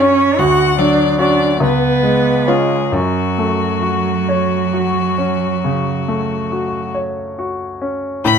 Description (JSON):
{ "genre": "classical, slow romantic movement for piano trio", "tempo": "44-53 BPM (dotted quarters)", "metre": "12/8", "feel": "rubato", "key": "F# minor", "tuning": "A4 = 440 Hz", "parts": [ { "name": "bright violin", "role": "melody", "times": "0.0-8.4 s", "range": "F#4 to B5", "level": "-20 LUFS", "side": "left 10 dB", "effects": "none" }, { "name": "rich cello", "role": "second line", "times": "0.0-8.4 s", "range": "C#3 to F#4", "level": "-17 LUFS", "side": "right 6 dB", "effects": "none" }, { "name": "bright concert grand piano", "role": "accompaniment", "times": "0.0-8.4 s", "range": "C#2 to C#5", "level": "-17 LUFS", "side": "left 2 dB", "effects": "none" } ], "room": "light reverb", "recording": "none", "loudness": "-14 LUFS", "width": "side -7 dB against mid", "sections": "0.0-8.3 A section", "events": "none", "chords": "0.4 Dmaj7; 1.6 C#7; 2.9 F#m", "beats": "0.40 1.61 | 2.94 4.29 5.65 6.95 | 8.26" }